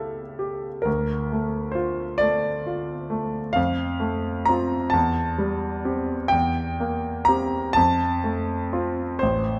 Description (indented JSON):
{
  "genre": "classical, romantic nocturne for solo piano",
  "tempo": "44 BPM (dotted quarters)",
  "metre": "12/8",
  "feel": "rubato",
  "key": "D minor, F major from 3.6 s",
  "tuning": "A4 = 442 Hz",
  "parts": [
    { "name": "clear concert grand piano", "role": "solo", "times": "0.0-9.6 s", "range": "A1 to Bb5", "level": "-24 LUFS", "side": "equal", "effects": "none" }
  ],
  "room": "moderate recital hall reverb, RT60 1.7 s",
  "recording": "none",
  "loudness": "-24 LUFS",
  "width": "mono",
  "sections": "0.0-9.6 A section",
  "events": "none",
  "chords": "0.0 A7/C#; 0.9 Dm; 3.6 F; 4.9 C/E; 6.3 C7/E; 7.8 F",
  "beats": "0.87 2.22 | 3.57 4.94 6.34 7.76 | 9.21"
}